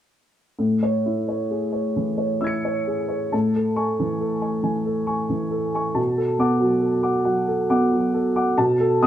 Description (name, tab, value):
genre	neoclassical minimalist piano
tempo	45 BPM (dotted quarters)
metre	6/8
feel	rubato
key	A major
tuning	A4 = 440 Hz
part	dark upright piano	solo	0.6-9.1 s	A2 to C#7	-20 LUFS	equal	none
room	wet small room reverb, RT60 0.5 s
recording	rough home demo mix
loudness	-20 LUFS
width	side -11 dB against mid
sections	0.6-3.3 A section; 3.3-9.1 B section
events	none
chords	0.6 Amaj7; 6.0 Bm7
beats	| 0.59 1.96 | 3.33 4.67 | 5.98 7.28 | 8.58